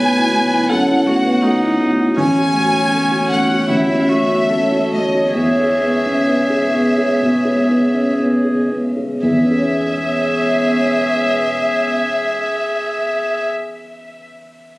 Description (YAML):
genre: neoclassical piano and strings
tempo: 57-83 BPM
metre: 4/4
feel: rubato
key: E major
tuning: A4 = 441 Hz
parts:
  - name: warm chamber violin section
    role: melody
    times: 0.0-13.5 s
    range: D#5 to G#5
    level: -20 LUFS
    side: left 1 dB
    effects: tape echo
  - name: dark upright piano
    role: accompaniment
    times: 0.0-14.8 s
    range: A1 to C#5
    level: -17 LUFS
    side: equal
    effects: none
  - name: rich viola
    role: accompaniment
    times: 0.0-13.4 s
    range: C#4 to B4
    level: -22 LUFS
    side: equal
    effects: none
  - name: dark analog pad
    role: sustained chords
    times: 0.0-13.4 s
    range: A3 to C#5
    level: -20 LUFS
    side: equal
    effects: chorus, phaser
room: light reverb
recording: recorded on a phone in the room, studio reverb, compression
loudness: -14 LUFS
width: side -20 dB against mid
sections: 0.0-9.2 A section; 9.2-13.3 B section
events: slowing down 0.7-9.2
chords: 0.0 B7sus4; 2.2 F#m7/A; 5.4 E6